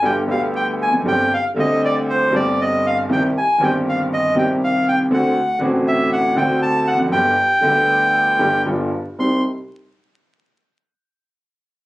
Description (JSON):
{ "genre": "tango", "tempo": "118 BPM", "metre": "4/4", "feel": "rubato", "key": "C harmonic minor", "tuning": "A4 = 440 Hz", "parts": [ { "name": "bandoneon", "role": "melody", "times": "0.0-9.4 s", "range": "C5 to C6", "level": "-17 LUFS", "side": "equal", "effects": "none" }, { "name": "warm concert grand piano", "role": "accompaniment", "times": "0.0-9.4 s", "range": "G1 to G4", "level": "-19 LUFS", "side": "equal", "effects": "none" } ], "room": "light reverb", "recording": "recorded on a phone in the room, club reverb, vinyl crackle", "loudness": "-15 LUFS", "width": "side -17 dB against mid", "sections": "0.0-9.2 A section; 9.2-11.2 B section", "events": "none", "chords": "0.0 G; 1.1 Gsus4; 3.1 Cm; 5.1 D7; 7.1 G; 8.7 G7; 9.2 Cm" }